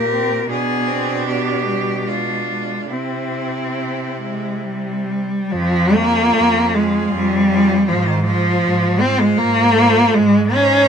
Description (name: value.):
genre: classical, lyrical piece for cello ensemble.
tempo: 66-82 BPM.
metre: 3/4.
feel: rubato.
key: F minor.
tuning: A4 = 440 Hz.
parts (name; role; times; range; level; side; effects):
clear cello; melody; 0.0-10.9 s; E4 to C5; -24 LUFS; left 4 dB; none.
clear cello; second line; 0.0-10.9 s; C4 to G4; -27 LUFS; right 8 dB; none.
rich cello; accompaniment; 0.0-10.9 s; Eb3 to Db4; -16 LUFS; equal; none.
clear cello; bass; 0.0-10.8 s; F2 to C3; -23 LUFS; right 2 dB; none.
room: moderate studio reverb, RT60 0.6 s.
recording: minimal, uncompressed stereo recording.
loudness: -15 LUFS.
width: side -7 dB against mid.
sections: 0.0-5.5 A section; 5.5-10.9 B section.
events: none.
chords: 0.5 Bdim7; 2.9 C; 5.5 Fm; 7.9 Fm/Ab; 10.1 Ab.